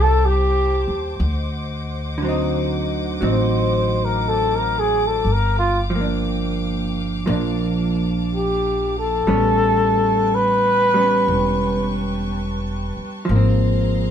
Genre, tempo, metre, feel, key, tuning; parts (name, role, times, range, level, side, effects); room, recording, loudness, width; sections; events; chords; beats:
jazz ballad; 60 BPM; 4/4; swing 68% on 8ths; A4 = 440 Hz
breathy trumpet; melody; 0.0-12.0 s; F4 to C5; -18 LUFS; left 1 dB
vintage hollow-body jazz guitar; accompaniment; 0.0-14.1 s; D3 to E4; -23 LUFS; right 2 dB
dark chamber string section; sustained chords; 0.0-14.1 s; Bb3 to D6; -31 LUFS; left 1 dB
upright bass; bass; 0.0-14.1 s; E1 to Eb2; -22 LUFS; equal
moderate studio reverb, RT60 0.6 s; band playing live in one room; -17 LUFS; side -9 dB against mid
0.0-14.1 A section
trumpet solo 0.0-14.1
0.0 Am7; 1.2 D7b9; 5.2 Gm7; 9.3 A9; 13.3 Ab69
0.19 | 1.20 2.20 3.21 4.23 | 5.25 6.26 7.27 8.27 | 9.28 10.28 11.29 12.29 | 13.30